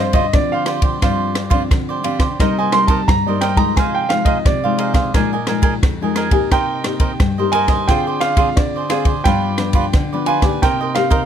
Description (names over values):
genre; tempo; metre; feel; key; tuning
samba and choro; 88 BPM; 4/4; straight; C minor; A4 = 440 Hz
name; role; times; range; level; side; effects
warm concert grand piano; melody; 0.0-11.3 s; C5 to C6; -20 LUFS; right 3 dB; none
cavaquinho; accompaniment; 0.0-11.2 s; Eb4 to Ab5; -21 LUFS; right 6 dB; none
nylon-string guitar; accompaniment; 0.0-11.3 s; F2 to Ab4; -20 LUFS; left 5 dB; none
compact cocktail drum kit; drums; 0.1-11.3 s; kick drum, ride cymbal, rim click; -17 LUFS; equal; none
room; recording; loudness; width
light reverb; close, detailed microphones; -14 LUFS; side -9 dB against mid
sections
0.0-11.3 A section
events
grand piano solo 0.0-11.3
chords
0.0 G7sus4; 2.4 Cm7; 3.8 Fm7/C; 5.1 Bb7sus4; 6.5 Cm7; 7.9 Dm7b5; 9.3 G7; 10.6 Cm7